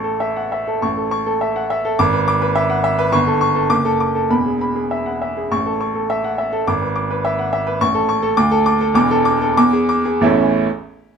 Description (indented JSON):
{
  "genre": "classical, virtuoso piano study",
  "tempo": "91-108 BPM",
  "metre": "2/4",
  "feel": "rubato",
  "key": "A major",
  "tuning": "A4 = 440 Hz",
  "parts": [
    { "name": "warm baby grand piano", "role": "solo", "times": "0.0-10.7 s", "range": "E1 to D6", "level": "-15 LUFS", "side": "equal", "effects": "none" }
  ],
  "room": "light reverb",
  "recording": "minimal, uncompressed stereo recording",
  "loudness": "-15 LUFS",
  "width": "side -6 dB against mid",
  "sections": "0.8-10.2 A section",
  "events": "none",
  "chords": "0.0 A; 2.0 E7/G#; 3.1 A7/G; 3.7 D/F#; 4.3 E; 5.5 A; 6.7 E7/G#; 7.8 A; 8.4 D5; 9.0 E7sus4; 9.6 E7; 10.2 A"
}